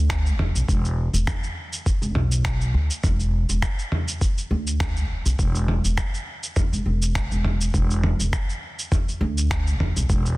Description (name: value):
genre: organic downtempo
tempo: 102 BPM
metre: 4/4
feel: swing 56% on 16ths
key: unclear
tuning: A4 = 441 Hz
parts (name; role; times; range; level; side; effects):
- upright bass; bass; 0.0-10.4 s; E1 to D2; -22 LUFS; equal; none
- dusty soul sampler-style drum kit; drums; 0.1-10.4 s; finger snaps, shaker, toms; -27 LUFS; equal; soft clipping on snare
- electronic kick drum; drums; 0.1-10.2 s; none; -23 LUFS; equal; none
room: little or no reverb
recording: dense, heavily limited modern master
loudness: -21 LUFS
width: side -21 dB against mid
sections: 0.0-10.4 A section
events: none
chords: none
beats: 0.09 | 0.68 1.27 1.86 2.45 | 3.04 3.62 4.21 4.80 | 5.39 5.98 6.57 7.15 | 7.74 8.33 8.92 9.51 | 10.09